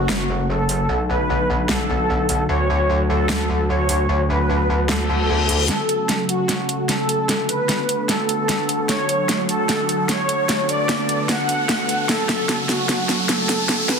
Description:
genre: heavy wobble dubstep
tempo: 150 BPM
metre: 4/4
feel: half-time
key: F# minor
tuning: A4 = 437 Hz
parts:
  - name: soft supersaw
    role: melody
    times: 0.0-14.0 s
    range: F#4 to F#5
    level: -22 LUFS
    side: equal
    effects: ping-pong delay
  - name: lush unison pad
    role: sustained chords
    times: 0.0-14.0 s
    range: C#3 to A4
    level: -26 LUFS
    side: right 1 dB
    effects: chorus
  - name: metallic wobble bass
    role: bass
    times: 0.0-5.7 s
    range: F#1 to D2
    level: -20 LUFS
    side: equal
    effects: distortion, chorus, overdrive
  - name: dubstep drum kit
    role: drums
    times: 0.1-14.0 s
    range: hi-hat, snare drum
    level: -22 LUFS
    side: equal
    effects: none
  - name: reverse cymbal and riser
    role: sound effects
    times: 5.1-14.0 s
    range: none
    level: -27 LUFS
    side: left 2 dB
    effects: none
room: moderate digital room reverb, RT60 1.2 s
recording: dense, heavily limited modern master, high-pass filter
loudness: -17 LUFS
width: side -6 dB against mid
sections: 0.0-5.7 A section; 5.7-14.0 B section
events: reverse cymbal 5.1-5.7; build-up 5.7-14.0; drum fill 5.7-14.0; riser 5.7-14.0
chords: 0.0 F#m; 0.9 Bm7; 2.5 D; 4.1 Bm7/D; 5.7 F#m; 7.3 Bm7; 8.9 D; 10.5 Bm7/D; 12.1 F#m

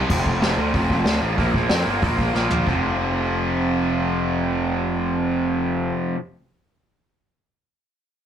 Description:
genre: punk rock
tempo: 186 BPM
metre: 4/4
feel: straight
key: unclear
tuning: A4 = 440 Hz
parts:
  - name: overdriven electric guitar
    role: riff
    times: 0.0-6.2 s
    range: F2 to Bb3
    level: -22 LUFS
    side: right 1 dB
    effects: none
  - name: fuzz picked electric bass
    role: bass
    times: 0.0-5.9 s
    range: F1 to F2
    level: -23 LUFS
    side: equal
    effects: overdrive
  - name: vintage brush drum kit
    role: drums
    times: 0.1-2.7 s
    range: crash cymbal, hi-hat, kick drum, snare drum, toms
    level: -23 LUFS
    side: equal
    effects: none
room: light reverb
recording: rough rehearsal-room recording, tube saturation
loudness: -19 LUFS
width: side -9 dB against mid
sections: 0.1-2.7 A section; 2.7-5.2 B section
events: drum fill 2.3-2.7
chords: 0.1 F5; 1.4 Bb5; 2.7 F5

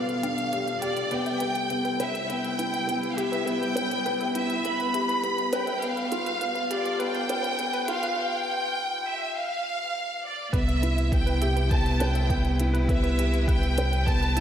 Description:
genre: piano and strings electronica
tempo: 102 BPM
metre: 4/4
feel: straight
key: C major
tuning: A4 = 442 Hz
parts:
  - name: rich studio violin section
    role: melody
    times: 0.0-14.4 s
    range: D5 to B5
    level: -28 LUFS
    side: right 1 dB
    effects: tape echo
  - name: muted string quartet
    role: sustained chords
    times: 0.0-14.4 s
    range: B2 to B4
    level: -36 LUFS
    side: left 1 dB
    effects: low-pass filter
  - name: felt-muted upright piano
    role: riff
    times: 0.0-14.4 s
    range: B3 to B4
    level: -30 LUFS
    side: left 1 dB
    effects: tape echo
  - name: analog pluck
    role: arpeggios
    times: 0.1-14.4 s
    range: B4 to G5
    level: -38 LUFS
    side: equal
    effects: chorus, sidechain pumping, tape echo
  - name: electronic hi-hat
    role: drums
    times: 0.1-14.4 s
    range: none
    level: -40 LUFS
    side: right 1 dB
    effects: high-pass filter on hats, high-pass filter on room
  - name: round analog bass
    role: bass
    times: 10.5-14.4 s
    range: C2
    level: -25 LUFS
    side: equal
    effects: sidechain pumping
  - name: electronic kick drum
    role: drums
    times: 10.5-14.2 s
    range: none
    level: -26 LUFS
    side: equal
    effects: none
room: wet lush hall reverb, RT60 2.0 s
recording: dreamy mix soaked in reverb, high-pass filter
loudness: -24 LUFS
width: side -9 dB against mid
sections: 0.0-10.5 A section; 10.5-14.4 B section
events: build-up 0.0-10.5; filter sweep on string quartet 0.0-10.5; filter sweep on synth arpeggio sound 0.0-10.5; break 8.2-10.5; drop 10.5-14.4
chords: 0.0 G7/B; 1.1 Cmaj7; 5.8 G7/B; 10.5 Cmaj7

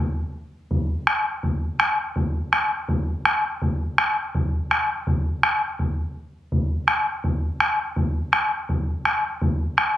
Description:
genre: andean folk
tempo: 83 BPM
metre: 4/4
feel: straight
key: none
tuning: none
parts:
  - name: bombo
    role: percussion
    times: 0.7-9.9 s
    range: none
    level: -21 LUFS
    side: equal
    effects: none
room: wet studio reverb, RT60 0.6 s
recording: recorded on a phone in the room, club reverb, compression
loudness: -21 LUFS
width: side -13 dB against mid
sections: 0.0-10.0 A section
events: none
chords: none

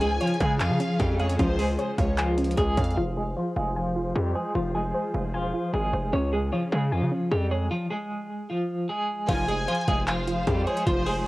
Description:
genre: hip hop, trap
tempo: 152 BPM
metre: 4/4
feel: half-time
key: F minor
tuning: A4 = 440 Hz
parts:
  - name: semi-hollow electric guitar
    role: melody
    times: 0.0-11.3 s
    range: F3 to Db5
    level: -28 LUFS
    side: equal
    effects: tremolo, low-pass filter, cassette tape
  - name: warm symphonic violin section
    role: second line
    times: 0.0-3.0, 9.3-11.2 s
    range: C5 to Ab5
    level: -32 LUFS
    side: equal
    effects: cassette tape, analog delay
  - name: soft round pluck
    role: accompaniment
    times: 0.0-11.3 s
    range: Db4 to Ab5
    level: -32 LUFS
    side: equal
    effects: chorus, low-pass filter, cassette tape
  - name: dark chamber string section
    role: sustained chords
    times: 0.0-11.3 s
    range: Db3 to C5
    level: -35 LUFS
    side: equal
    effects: low-pass filter, cassette tape
  - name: clear brass ensemble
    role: stabs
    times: 0.0-0.2, 9.3-9.7 s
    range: C2 to F3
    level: -41 LUFS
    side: right 4 dB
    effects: none
  - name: distorted 808-style bass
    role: bass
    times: 0.0-11.2 s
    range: E1 to Db3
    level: -27 LUFS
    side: equal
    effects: distortion
  - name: trap drum kit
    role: drums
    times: 0.0-3.0, 9.3-11.2 s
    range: crash cymbal, handclaps, hi-hat, kick drum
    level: -29 LUFS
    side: equal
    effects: cassette tape
room: digital ambience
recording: home recording on cassette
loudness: -23 LUFS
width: side -19 dB against mid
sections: 0.0-3.0 A section; 3.0-9.3 B section; 9.3-11.3 A section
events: filter sweep 3.0-9.3; stop 7.7-9.3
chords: 0.0 Db; 3.0 Fm; 6.1 Db; 9.3 Fm

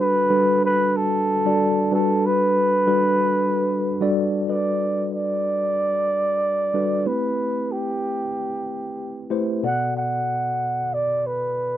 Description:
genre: soul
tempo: 93 BPM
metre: 4/4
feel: swing 58% on 16ths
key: G major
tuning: A4 = 440 Hz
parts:
  - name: breathy flugelhorn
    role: melody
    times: 0.0-11.8 s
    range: G4 to F#5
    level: -21 LUFS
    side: right 1 dB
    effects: none
  - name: mellow tine electric piano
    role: accompaniment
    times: 0.0-11.8 s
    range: B2 to D5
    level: -23 LUFS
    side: left 1 dB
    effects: medium stereo tremolo
room: little or no reverb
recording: dry, close 1970s-style studio recording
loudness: -19 LUFS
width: side -12 dB against mid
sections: 0.0-4.5 A section; 4.5-11.8 B section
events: none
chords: 0.0 Gmaj9; 7.1 Am9; 9.6 Bm7

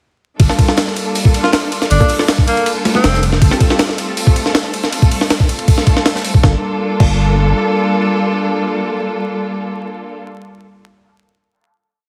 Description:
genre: drum and bass, jungle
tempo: 159 BPM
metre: 4/4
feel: straight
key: G minor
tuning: A4 = 440 Hz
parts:
  - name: muted studio string section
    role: sustained chords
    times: 0.4-10.2 s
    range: G3 to A4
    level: -21 LUFS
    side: equal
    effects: none
  - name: saturated sub bass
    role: bass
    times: 0.4-3.5, 6.4-7.5 s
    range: F1 to G1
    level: -16 LUFS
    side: equal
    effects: none
  - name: breakbeat sampler-style drum kit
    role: drums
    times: 0.4-7.1 s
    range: crash cymbal, hi-hat, kick drum, ride cymbal, snare drum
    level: -15 LUFS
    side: equal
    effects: studio reverb
  - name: crisp fusion drum kit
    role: drums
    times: 0.4-6.3 s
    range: hi-hat, snare drum, tambourine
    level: -30 LUFS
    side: equal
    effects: high-pass filter on hats, studio reverb, high-pass filter on snare, high-pass filter on perc, high-pass filter on room
  - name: filtered dub chord stab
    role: stabs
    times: 0.5-10.8 s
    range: Bb3 to A4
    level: -27 LUFS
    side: equal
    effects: phaser, subtle chorus, dub echo
  - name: breathy tenor saxophone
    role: melody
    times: 1.4-3.2 s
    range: Bb3 to F4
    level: -21 LUFS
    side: equal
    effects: vintage 12-bit sampler grit, dub echo
room: moderate echo chamber reverb, RT60 1.8 s, studio ambience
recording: heavily compressed radio sound, vinyl crackle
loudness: -14 LUFS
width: mono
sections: 0.4-6.4 drop; 6.4-9.5 final chord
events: drop 0.4-6.4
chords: 0.4 Gm9; 3.4 Fadd9/G; 6.4 Gm9

